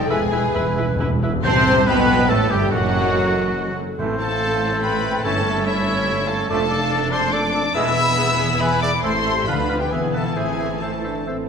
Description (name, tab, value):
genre	classical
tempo	131-145 BPM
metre	3/4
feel	rubato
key	A minor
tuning	A4 = 440 Hz
part	warm symphonic violin section	melody	0.0-11.3 s	E5 to E6	-26 LUFS	left 4 dB	none
part	large flute ensemble	second line	0.0-11.3 s	C#5 to B5	-29 LUFS	equal	none
part	warm symphonic violin section	second line	0.0-11.5 s	D4 to C5	-30 LUFS	left 4 dB	none
part	clear trombone section	sustained chords	0.0-11.5 s	F#2 to E4	-28 LUFS	right 4 dB	none
part	dark French horn section	sustained chords	0.0-11.5 s	F#3 to B4	-28 LUFS	left 3 dB	none
part	concert harp	arpeggios	0.0-11.5 s	E2 to E5	-30 LUFS	left 6 dB	none
part	clear trumpet	stabs	0.0-11.3 s	E4 to E5	-26 LUFS	right 1 dB	none
part	warm studio double bass section	bass	0.0-11.5 s	E1 to D2	-26 LUFS	right 4 dB	none
part	warm symphonic cello section	bass	0.0-11.5 s	D2 to G#3	-30 LUFS	right 3 dB	none
part	clear clarinet	second line	0.1-11.4 s	F#4 to C5	-29 LUFS	left 2 dB	none
part	warm oboe	second line	0.1-11.4 s	F#4 to F5	-28 LUFS	right 1 dB	none
part	warm symphonic viola section	accompaniment	0.1-11.5 s	E3 to B4	-27 LUFS	right 1 dB	none
part	timpani	percussion	0.1-4.6 s	E2 to A2	-26 LUFS	left 1 dB	none
room	wet concert hall reverb, RT60 1.9 s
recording	minimal, uncompressed stereo recording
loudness	-17 LUFS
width	side -6 dB against mid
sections	0.0-1.4 A section; 1.4-11.5 A section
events	timpani fill 0.1-1.4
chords	0.1 E; 1.4 Am; 2.7 Adim7/F#; 4.0 Am; 5.2 A7/G; 6.5 Dm/F; 7.8 E; 9.0 Am; 9.5 Bdim/D; 9.9 E; 10.4 Am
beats	| 0.10 0.55 1.00 | 1.45 1.87 2.30 | 2.73 3.15 3.56 | 3.99 4.41 4.83 | 5.24 5.66 6.08 | 6.50 6.92 7.33 | 7.76 8.18 8.61 | 9.04 9.47 9.91 | 10.36 10.82 11.27